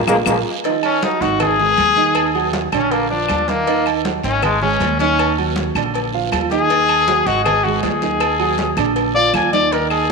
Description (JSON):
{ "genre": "latin, salsa", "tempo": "159 BPM", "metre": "4/4", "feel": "straight", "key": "Eb minor", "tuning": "A4 = 441 Hz", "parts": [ { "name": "upright bass", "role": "bass", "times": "0.0-10.1 s", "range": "Ab1 to Eb2", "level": "-25 LUFS", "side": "left 2 dB", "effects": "none" }, { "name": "dark grand piano", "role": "accompaniment", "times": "0.1-10.1 s", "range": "D3 to Ab5", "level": "-21 LUFS", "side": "right 10 dB", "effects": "none" }, { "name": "claves", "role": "percussion", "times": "0.1-10.1 s", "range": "none", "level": "-28 LUFS", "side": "left 13 dB", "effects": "none" }, { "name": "congas", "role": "percussion", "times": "0.1-10.1 s", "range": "none", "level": "-28 LUFS", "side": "left 2 dB", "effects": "none" }, { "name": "cowbell", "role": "percussion", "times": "0.1-9.9 s", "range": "none", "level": "-29 LUFS", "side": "left 13 dB", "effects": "none" }, { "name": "guiro", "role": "percussion", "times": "0.1-10.1 s", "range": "none", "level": "-33 LUFS", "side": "right 12 dB", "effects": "none" }, { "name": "timbales and agogo bells", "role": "percussion", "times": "0.1-10.1 s", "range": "none", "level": "-24 LUFS", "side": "right 10 dB", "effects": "none" }, { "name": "warm trumpet", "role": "melody", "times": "0.8-10.1 s", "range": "Ab3 to Ab5", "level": "-17 LUFS", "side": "left 4 dB", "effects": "none" } ], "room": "moderate echo chamber reverb, RT60 2.1 s", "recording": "1960s-style stereo with parts hard left and right", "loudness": "-14 LUFS", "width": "side -3 dB against mid", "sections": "0.6-10.1 A section", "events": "drum fill 0.0-0.6; band accent 0.0-0.6; trumpet solo 0.6-10.1", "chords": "0.0 Bb5; 0.6 Ebm; 1.4 Ab5; 2.2 Ebm; 2.9 Bb; 3.7 Ebm; 4.4 Ab5; 5.2 Ebm; 5.9 Bb; 6.7 Ebm; 7.5 Ab5; 8.2 Ebm; 9.0 Bb" }